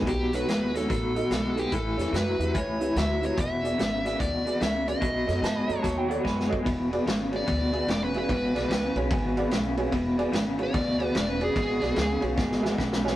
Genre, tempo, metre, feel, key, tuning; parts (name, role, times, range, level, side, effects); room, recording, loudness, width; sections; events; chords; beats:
electric blues shuffle; 146 BPM; 4/4; swing 64% on 8ths; E mixolydian; A4 = 440 Hz
electric guitar through a small old amp; riff; 0.0-13.2 s; E2 to G#3; -29 LUFS; left 1 dB; tremolo
vintage drum kit; drums; 0.0-13.2 s; hi-hat, kick drum, ride cymbal, snare drum; -30 LUFS; equal
dark smooth lead guitar; melody; 0.1-12.2 s; G4 to E5; -31 LUFS; equal; overdrive, tape echo
upright bass; bass; 0.1-13.1 s; E1 to G#2; -33 LUFS; equal
honky-tonk upright piano; accompaniment; 0.3-13.2 s; D#4 to B5; -33 LUFS; right 2 dB
bright upright piano; second line; 5.4-6.6 s; B4 to B5; -34 LUFS; right 4 dB
moderate stone room reverb, RT60 1.3 s; rough rehearsal-room recording; -24 LUFS; side -14 dB against mid
0.0-6.7 A section; 6.7-13.2 B section
drum fill 6.2-6.7, 12.4-13.2; lead electric guitar solo 6.7-13.2; honky-tonk piano fill 8.7-9.9, 12.6-13.2
0.0 B7; 1.7 A7; 3.4 E7; 5.0 B7; 6.7 E7
| 0.07 0.48 0.90 1.31 | 1.72 2.13 2.55 2.96 | 3.37 3.78 4.19 4.61 | 5.02 5.43 5.84 6.25 | 6.66 7.07 7.48 7.89 | 8.30 8.70 9.11 9.52 | 9.93 10.34 10.74 11.15 | 11.56 11.97 12.38 12.78